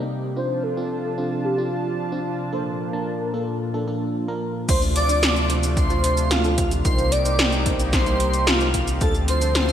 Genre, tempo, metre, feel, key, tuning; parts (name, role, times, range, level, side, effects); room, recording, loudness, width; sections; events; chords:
synthwave; 111 BPM; 4/4; straight; D phrygian; A4 = 438 Hz
warm velvety synth lead; melody; 0.0-9.7 s; F4 to D5; -26 LUFS; equal; chorus
warm analog pad; sustained chords; 0.0-9.7 s; Bb2 to A5; -27 LUFS; equal; chorus, vintage 12-bit sampler grit, sidechain pumping
mellow FM electric piano; stabs; 0.0-9.7 s; Bb3 to A5; -30 LUFS; right 1 dB; chorus, cassette tape
airy dreamy lead; second line; 4.7-9.7 s; F5 to D6; -28 LUFS; right 2 dB; chorus, phaser
round analog bass; bass; 4.7-9.7 s; C2 to D2; -23 LUFS; equal; sidechain pumping
80s electronic pad drums; drums; 4.7-9.7 s; crash cymbal, hi-hat, shaker, snare drum; -23 LUFS; equal; gated reverb
electronic kick drum; drums; 4.7-9.1 s; -23 LUFS; equal
moderate lush hall reverb, RT60 2.7 s; bright 1980s-style digital production; -19 LUFS; side -10 dB against mid
0.0-4.7 A section; 4.7-9.7 B section
0.4 Dm7; 2.5 Bbmaj7; 4.7 Dm7; 6.8 Cm7; 9.0 Dm7